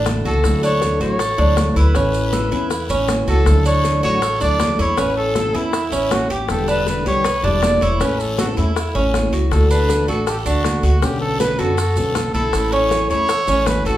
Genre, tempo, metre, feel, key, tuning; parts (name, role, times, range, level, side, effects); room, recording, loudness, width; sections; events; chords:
latin, Cuban son and guajira; 159 BPM; 4/4; straight; D major; A4 = 439 Hz
fingerpicked plugged-in steel-string acoustic guitar; accompaniment; 0.0-14.0 s; B2 to F#4; -24 LUFS; left 2 dB
Cuban tres; arpeggios; 0.0-14.0 s; C#4 to B4; -22 LUFS; right 2 dB
upright bass; bass; 0.0-14.0 s; E1 to F#2; -20 LUFS; equal
bongos; percussion; 0.1-14.0 s; -27 LUFS; left 5 dB
congas; percussion; 0.1-14.0 s; -28 LUFS; equal
guiro; percussion; 0.1-14.0 s; -34 LUFS; left 3 dB
maracas; percussion; 0.1-14.0 s; -34 LUFS; right 4 dB
warm trumpet; melody; 0.3-14.0 s; E4 to D5; -21 LUFS; equal
wet large studio reverb, RT60 0.8 s; band playing live in one room; -15 LUFS; side -13 dB against mid
0.0-3.5 A section; 3.5-14.0 A section
0.4 Dadd9; 2.0 Aadd9; 3.5 Dadd9; 5.0 Aadd9; 6.5 Em7; 8.0 A; 9.5 D; 11.0 Bmadd9; 12.5 A